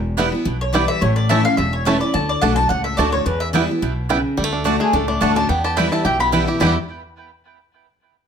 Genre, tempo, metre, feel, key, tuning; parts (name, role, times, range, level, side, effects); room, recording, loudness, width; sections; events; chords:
bluegrass; 215 BPM; 4/4; swing 54% on 8ths; E dorian; A4 = 439 Hz
picked steel-string acoustic guitar; accompaniment; 0.0-6.7 s; E2 to F#4; -21 LUFS; left 2 dB
upright bass; bass; 0.0-6.7 s; E1 to E2; -23 LUFS; equal
bluegrass banjo; arpeggios; 0.2-6.8 s; G3 to G4; -23 LUFS; right 2 dB
mandolin; stabs; 0.2-6.7 s; A3 to A5; -24 LUFS; right 6 dB; tape echo
mandolin; melody; 0.6-6.7 s; G#4 to B5; -21 LUFS; left 1 dB; plate reverb
moderate studio reverb, RT60 0.8 s; close, detailed microphones; -16 LUFS; side -7 dB against mid
0.0-4.4 A section; 4.4-6.6 B section; 6.6-7.7 C section
0.0 Em; 1.0 A; 2.1 D; 3.3 Em; 4.4 D; 5.5 Em